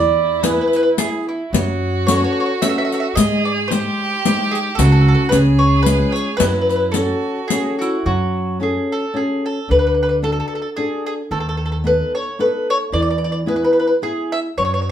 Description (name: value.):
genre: italian folk, Italian serenade.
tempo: 110 BPM.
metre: 3/4.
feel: swing 55% on 8ths, rubato.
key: F# minor.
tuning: A4 = 440 Hz.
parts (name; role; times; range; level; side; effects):
mandolin; melody; 0.0-14.9 s; E4 to E5; -19 LUFS; equal; none.
warm violin; second line; 0.0-7.8 s; E4 to G#4; -23 LUFS; right 3 dB; none.
flamenco guitar; accompaniment; 0.0-14.9 s; C#3 to B#4; -21 LUFS; left 1 dB; none.
upright bass; bass; 0.0-14.9 s; C#2 to G#2; -19 LUFS; right 1 dB; none.
riq; percussion; 0.4-7.9 s; none; -22 LUFS; left 5 dB; none.
room: wet studio reverb, RT60 0.6 s.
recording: band playing live in one room.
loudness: -15 LUFS.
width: side -10 dB against mid.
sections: 0.0-8.1 A section; 8.1-14.9 A section.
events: none.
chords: 0.0 E; 1.5 F#m; 3.2 G#; 4.8 F#5/C#; 5.3 C#; 6.4 F#m; 9.7 D; 11.3 B7/D#; 12.9 E.